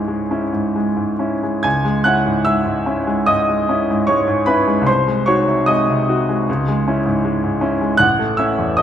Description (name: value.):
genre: classical, romantic character piece for solo piano.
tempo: 64-81 BPM.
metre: 4/4.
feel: rubato.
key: C# minor.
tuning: A4 = 440 Hz.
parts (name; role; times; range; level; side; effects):
bright baby grand piano; solo; 0.0-8.8 s; A1 to G#6; -15 LUFS; equal; none.
room: wet recital hall reverb, RT60 1.3 s.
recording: none.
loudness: -15 LUFS.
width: side -9 dB against mid.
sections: 0.0-1.6 A section; 1.6-8.8 A section.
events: none.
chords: 0.0 C#m; 4.9 G#7/B#; 6.5 C#m; 8.0 A.